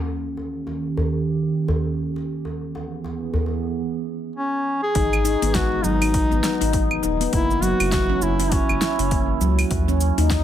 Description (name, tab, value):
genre	organic downtempo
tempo	101 BPM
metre	4/4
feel	swing 60% on 16ths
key	G# minor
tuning	A4 = 441 Hz
part	warbly tape-like pad	sustained chords	0.0-4.9 s	D#3 to G#4	-25 LUFS	right 4 dB	chorus, built-in reverb, sidechain pumping
part	djembe	percussion	0.4-3.6 s	none	-27 LUFS	left 1 dB	none
part	warm duduk	melody	4.4-9.4 s	C#4 to G#4	-24 LUFS	equal	tape echo
part	handpan	arpeggios	5.0-10.4 s	F#3 to E4	-23 LUFS	equal	tape echo
part	round analog bass	bass	5.0-10.4 s	D#1 to D#2	-23 LUFS	equal	sidechain pumping
part	deep house drum kit	drums	5.0-10.4 s	cabasa, claves, hi-hat, snare drum	-27 LUFS	equal	overdrive, low-pass filter on hats, low-pass filter on perc, low-pass filter on snare
part	electronic kick drum	drums	5.0-10.4 s	none	-25 LUFS	equal	overdrive
room	light reverb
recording	none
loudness	-20 LUFS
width	side -10 dB against mid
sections	0.0-5.0 A section; 5.0-10.4 B section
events	filter sweep on ambient pad 0.0-5.0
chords	0.2 D#7; 2.6 C#m7; 5.0 G#m; 7.3 F#7; 9.7 D#7(no3)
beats	| 0.20 0.80 1.39 1.98 | 2.58 3.17 3.77 4.36 | 4.96 5.55 6.14 6.74 | 7.33 7.92 8.52 9.11 | 9.71 10.30